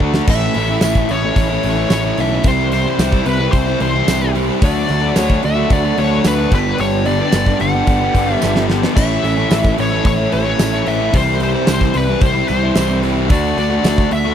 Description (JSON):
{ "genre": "classic rock", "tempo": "110 BPM", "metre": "4/4", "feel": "straight", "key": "unclear", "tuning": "A4 = 439 Hz", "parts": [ { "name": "tonewheel organ", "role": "sustained chords", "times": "0.0-14.3 s", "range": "G3 to A4", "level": "-29 LUFS", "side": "right 1 dB", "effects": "none" }, { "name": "overdriven electric guitar", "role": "riff", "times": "0.0-14.3 s", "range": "G2 to G4", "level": "-21 LUFS", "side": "left 13 dB", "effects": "none" }, { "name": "overdriven electric guitar", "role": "riff", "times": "0.0-14.3 s", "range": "G2 to F#4", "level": "-21 LUFS", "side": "right 17 dB", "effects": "none" }, { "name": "fuzz picked electric bass", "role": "bass", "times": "0.0-14.3 s", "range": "G1 to D2", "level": "-19 LUFS", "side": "equal", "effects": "overdrive" }, { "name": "huge arena drum kit", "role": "drums", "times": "0.0-14.2 s", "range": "crash cymbal, hi-hat, kick drum, snare drum, splash cymbal", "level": "-18 LUFS", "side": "equal", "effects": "none" }, { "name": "biting lead guitar", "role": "melody", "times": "0.3-14.3 s", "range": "B4 to F#5", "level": "-20 LUFS", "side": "left 4 dB", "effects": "wah, overdrive" }, { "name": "tambourine", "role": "percussion", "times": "0.8-14.0 s", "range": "none", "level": "-30 LUFS", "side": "right 11 dB", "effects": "none" } ], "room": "little or no reverb", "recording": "dry, close 1970s-style studio recording", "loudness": "-13 LUFS", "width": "side -9 dB against mid", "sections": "0.3-14.3 A section", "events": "drum fill 0.0, 8.4-9.0", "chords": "0.3 A; 2.4 C; 4.6 D; 6.5 Gadd9; 9.0 A; 11.1 C; 13.3 D" }